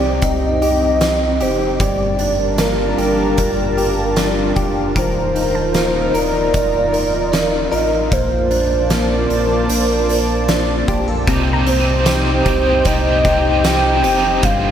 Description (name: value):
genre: dream pop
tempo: 76 BPM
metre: 4/4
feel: straight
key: unclear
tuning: A4 = 439 Hz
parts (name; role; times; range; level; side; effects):
- warbly nostalgic lead; melody; 0.0-14.7 s; Bb4 to G5; -19 LUFS; right 1 dB; chorus, digital delay
- lush unison pad; sustained chords; 0.0-14.7 s; G3 to A5; -20 LUFS; equal; chorus
- direct-recorded clean electric guitar; arpeggios; 0.0-14.7 s; G2 to Bb4; -22 LUFS; left 2 dB; ensemble chorus, digital delay, slapback echo
- sub bass with octave; bass; 0.0-14.7 s; Eb1 to C2; -22 LUFS; equal; none
- oversized low-tuned drum kit; drums; 0.2-14.6 s; hi-hat, kick drum, snare drum, tambourine; -21 LUFS; equal; none
- hollow square pluck; texture; 5.5-13.6 s; A5 to Bb5; -31 LUFS; left 2 dB; chorus, digital delay
- overdriven electric guitar; accompaniment; 11.3-14.7 s; G2 to G4; -21 LUFS; right 3 dB; tremolo, analog chorus, slapback echo
room: moderate lush hall reverb, RT60 2.6 s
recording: big arena sound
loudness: -14 LUFS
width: side -9 dB against mid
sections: 0.0-11.3 A section; 11.3-14.7 B section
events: none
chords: 0.0 Cm; 1.8 Gm7; 5.0 Ebsus2; 8.1 Bbmaj7; 11.3 Cm